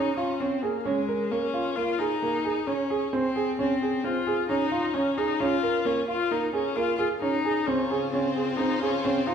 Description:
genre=contemporary instrumental, chamber music in an uneven meter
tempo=132 BPM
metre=5/4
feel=straight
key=Db major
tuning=A4 = 440 Hz
part: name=warm viola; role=second line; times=0.0-9.3 s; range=Ab3 to F4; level=-28 LUFS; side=left 6 dB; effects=none
part: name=warm grand piano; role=arpeggios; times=0.0-9.3 s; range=Bb3 to Bb4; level=-26 LUFS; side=right 4 dB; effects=none
part: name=rich symphonic string section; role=sustained chords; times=7.7-9.3 s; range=Db3 to C5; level=-32 LUFS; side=left 2 dB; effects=none
room=wet recital hall reverb, RT60 1.4 s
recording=recorded in a church or concert hall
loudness=-24 LUFS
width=side -7 dB against mid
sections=0.0-9.3 A section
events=none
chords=0.0 Dbmaj7; 0.9 Bbm7; 3.1 Dbmaj7(no3); 5.4 Bbm7; 7.7 Dbmaj7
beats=0.40 | 0.86 1.31 1.77 2.22 2.68 | 3.13 3.59 4.04 4.50 4.95 | 5.41 5.86 6.31 6.77 7.22 | 7.67 8.13 8.58 9.03

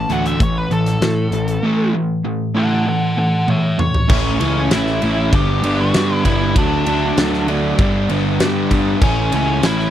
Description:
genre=classic rock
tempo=98 BPM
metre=4/4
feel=straight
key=A mixolydian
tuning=A4 = 440 Hz
part: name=nasal lead guitar with a parked wah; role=melody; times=0.0-9.9 s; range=C#4 to F#5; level=-21 LUFS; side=equal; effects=overdrive, slapback echo
part: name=overdriven semi-hollow guitar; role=riff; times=0.0-9.9 s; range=G2 to E4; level=-18 LUFS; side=equal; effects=none
part: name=fuzz picked electric bass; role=bass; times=0.0-9.9 s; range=G1 to A2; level=-20 LUFS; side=equal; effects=overdrive
part: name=huge arena drum kit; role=drums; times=0.1-9.9 s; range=crash cymbal, hi-hat, kick drum, ride cymbal, snare drum, toms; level=-19 LUFS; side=equal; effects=none
room=little or no reverb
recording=dry, close 1970s-style studio recording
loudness=-14 LUFS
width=side -11 dB against mid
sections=0.0-4.1 A section; 4.1-9.9 B section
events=lead electric guitar solo 0.0-4.1; drum fill 3.5-4.1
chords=0.0 A5; 4.1 A; 5.3 G; 6.6 D; 7.8 G; 9.0 A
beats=0.41 1.02 | 1.64 2.26 2.87 3.49 | 4.10 4.71 5.33 5.94 | 6.56 7.17 7.79 8.40 | 9.02 9.63

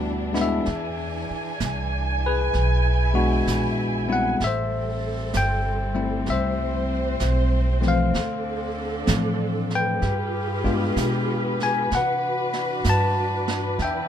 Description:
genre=jazz ballad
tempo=64 BPM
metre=4/4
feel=swing 67% on 8ths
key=E minor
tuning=A4 = 440 Hz
part: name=bell-like tine electric piano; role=accompaniment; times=0.0-14.1 s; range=E3 to A5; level=-25 LUFS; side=left 3 dB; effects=none
part: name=warm symphonic string section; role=sustained chords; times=0.0-14.1 s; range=D3 to G#5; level=-28 LUFS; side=right 1 dB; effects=none
part: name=upright bass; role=bass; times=0.0-14.1 s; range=G1 to C3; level=-25 LUFS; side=right 1 dB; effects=none
part: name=vintage brush drum kit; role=drums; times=0.3-14.1 s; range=brushed snare drum, hi-hat, kick drum, snare drum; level=-32 LUFS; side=right 4 dB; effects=none
room=little or no reverb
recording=minimal, uncompressed stereo recording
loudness=-21 LUFS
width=side -9 dB against mid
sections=0.0-14.1 A section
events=none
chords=0.0 Em7; 0.7 E7; 4.4 Am9; 8.1 Dm7; 10.0 G7b9; 11.9 Cmaj9#11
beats=| 0.67 1.60 2.54 3.47 | 4.40 5.33 6.27 7.20 | 8.13 9.07 10.02 10.96 | 11.91 12.85 13.79

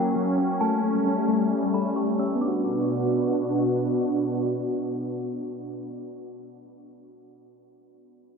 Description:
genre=hip hop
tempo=133 BPM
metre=4/4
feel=half-time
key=B minor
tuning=A4 = 439 Hz
part: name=metallic FM bell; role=melody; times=0.0-3.7 s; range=G5 to E6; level=-33 LUFS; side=right 1 dB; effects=chorus, low-pass filter, ping-pong delay
part: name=sweeping resonant pad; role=sustained chords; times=0.0-6.3 s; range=B2 to F#4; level=-25 LUFS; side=right 1 dB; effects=chorus, low-pass filter
part: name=soft electric-piano-like synth keys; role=arpeggios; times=0.0-6.4 s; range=F#3 to A#4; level=-29 LUFS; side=left 4 dB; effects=chorus, low-pass filter, ping-pong delay
room=moderate huge ambient reverb, RT60 7.5 s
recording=none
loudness=-23 LUFS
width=side -5 dB against mid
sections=0.0-2.4 A section; 2.4-6.0 B section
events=filter sweep 0.0-2.4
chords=0.0 F#; 0.6 A7; 2.4 Bm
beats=0.16 | 0.61 1.06 1.51 1.96 | 2.41 2.87 3.32 3.77 | 4.22 4.67 5.12 5.57

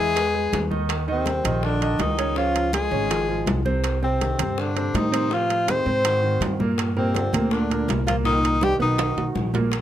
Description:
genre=Afro-Cuban jazz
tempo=163 BPM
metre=4/4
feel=straight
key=unclear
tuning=A4 = 440 Hz
part: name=breathy tenor saxophone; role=melody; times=0.0-9.3 s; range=C4 to C5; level=-24 LUFS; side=left 3 dB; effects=none
part: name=breathy trombone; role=second line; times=0.0-9.3 s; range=C3 to C4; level=-31 LUFS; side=right 5 dB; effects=none
part: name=warm concert grand piano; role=accompaniment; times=0.0-9.7 s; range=Bb2 to E5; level=-27 LUFS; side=right 3 dB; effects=none
part: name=upright bass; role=bass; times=0.0-9.8 s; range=Ab1 to A2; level=-26 LUFS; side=equal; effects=none
part: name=bongos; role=percussion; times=0.2-9.8 s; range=none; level=-34 LUFS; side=left 6 dB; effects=none
part: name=congas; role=percussion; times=0.2-9.8 s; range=none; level=-31 LUFS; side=equal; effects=none
part: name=timbales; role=percussion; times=0.2-9.8 s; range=none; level=-29 LUFS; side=right 8 dB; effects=none
room=little or no reverb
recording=close, detailed microphones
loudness=-20 LUFS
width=side -11 dB against mid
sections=0.0-9.7 A section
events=drum fill 8.6-9.7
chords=0.2 E; 0.9 Eb6; 2.4 Db; 3.8 Cmadd9; 5.3 Am7b5; 6.0 Ab9; 6.8 Gm; 8.3 Cm7; 9.0 B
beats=0.16 0.53 | 0.90 1.27 1.63 2.00 | 2.37 2.74 3.11 3.48 | 3.84 4.21 4.58 4.95 | 5.31 5.68 6.05 6.42 | 6.79 7.15 7.52 7.89 | 8.26 8.62 8.99 9.36 | 9.73

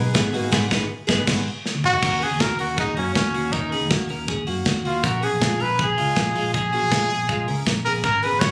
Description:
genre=jangly indie pop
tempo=160 BPM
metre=4/4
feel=straight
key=Eb minor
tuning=A4 = 440 Hz
part: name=picked twelve-string acoustic guitar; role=accompaniment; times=0.0-1.4 s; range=Ab2 to Ab4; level=-27 LUFS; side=equal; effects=none
part: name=clean electric guitar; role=arpeggios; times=0.0-8.5 s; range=Ab3 to Bb4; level=-30 LUFS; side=equal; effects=none
part: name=vintage muted fingered electric bass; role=bass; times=0.0-8.5 s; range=Ab1 to Gb2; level=-29 LUFS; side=equal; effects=none
part: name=modern studio drum kit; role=drums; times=0.1-8.5 s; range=crash cymbal, hi-hat, kick drum, snare drum, toms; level=-27 LUFS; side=equal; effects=none
part: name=clear trumpet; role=melody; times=1.9-8.5 s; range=Db4 to Db5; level=-25 LUFS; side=equal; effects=none
room=light reverb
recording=recorded on a phone in the room, studio ambience, compression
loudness=-22 LUFS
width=mono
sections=0.0-2.0 A section; 2.0-8.5 B section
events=band accent 0.5-2.0; drum fill 1.6-2.0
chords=0.0 Abm; 2.0 Ebm7; 5.0 Bbm7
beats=0.15 | 0.52 0.90 1.27 1.65 | 2.03 2.40 2.78 3.15 | 3.53 3.91 4.28 4.66 | 5.04 5.41 5.79 6.16 | 6.54 6.92 7.29 7.67 | 8.04 8.42

